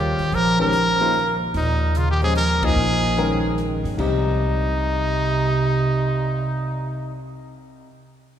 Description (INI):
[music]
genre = modal jazz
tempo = 147 BPM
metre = 3/4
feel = swing 67% on 8ths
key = C phrygian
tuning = A4 = 440 Hz
[part]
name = brilliant trumpet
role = melody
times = 0.0-7.2 s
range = Eb4 to Bb4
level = -23 LUFS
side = equal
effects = none
[part]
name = dark bass clarinet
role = second line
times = 0.0-7.2 s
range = Bb2 to F3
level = -24 LUFS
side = right 2 dB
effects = none
[part]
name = warm baby grand piano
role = accompaniment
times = 0.0-7.9 s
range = C2 to G5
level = -27 LUFS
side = left 2 dB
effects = none
[part]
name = upright bass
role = bass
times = 0.0-7.8 s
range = Bb1 to G2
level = -25 LUFS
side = equal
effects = none
[part]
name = open jazz drum kit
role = drums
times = 0.2-6.3 s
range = crash cymbal, cymbal swell, hi-hat, kick drum, ride cymbal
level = -32 LUFS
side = equal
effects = none
[sound]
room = wet church reverb, RT60 3.4 s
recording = recorded in a church or concert hall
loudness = -18 LUFS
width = side -10 dB against mid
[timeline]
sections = 0.0-4.0 A section; 4.0-6.4 B section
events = band accent 2.6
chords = 0.0 Eb9sus4; 4.0 Cm